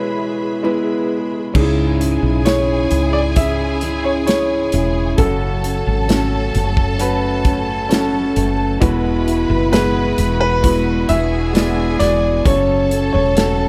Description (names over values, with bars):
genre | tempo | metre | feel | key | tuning
pop ballad | 66 BPM | 4/4 | straight | F# minor | A4 = 440 Hz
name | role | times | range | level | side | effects
clear concert grand piano | melody | 0.0-13.7 s | A4 to E5 | -23 LUFS | equal | none
warm concert grand piano | accompaniment | 0.0-13.7 s | G#2 to D5 | -22 LUFS | equal | none
warm studio string section | sustained chords | 0.0-13.7 s | C#3 to B5 | -31 LUFS | equal | none
fingerpicked steel-string acoustic guitar | arpeggios | 0.0-13.7 s | F#2 to A4 | -28 LUFS | equal | none
clear studio violin section | second line | 1.5-13.7 s | G#4 to B5 | -29 LUFS | equal | tape echo
woody fretless electric bass | bass | 1.5-13.7 s | E1 to C#2 | -22 LUFS | equal | ensemble chorus
modern studio drum kit | drums | 1.5-13.6 s | crash cymbal, hi-hat, kick drum, snare drum | -22 LUFS | equal | none
room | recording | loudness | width
light reverb, small room ambience | none | -17 LUFS | mono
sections
0.0-1.5 A section; 1.5-13.7 B section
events
break 0.0-1.5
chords
0.0 E; 1.5 C#m; 5.2 F#m; 8.8 Eadd9; 12.5 F#m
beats
0.64 | 1.55 2.46 3.37 4.27 | 5.18 6.09 7.00 7.91 | 8.82 9.73 10.64 11.55 | 12.46 13.37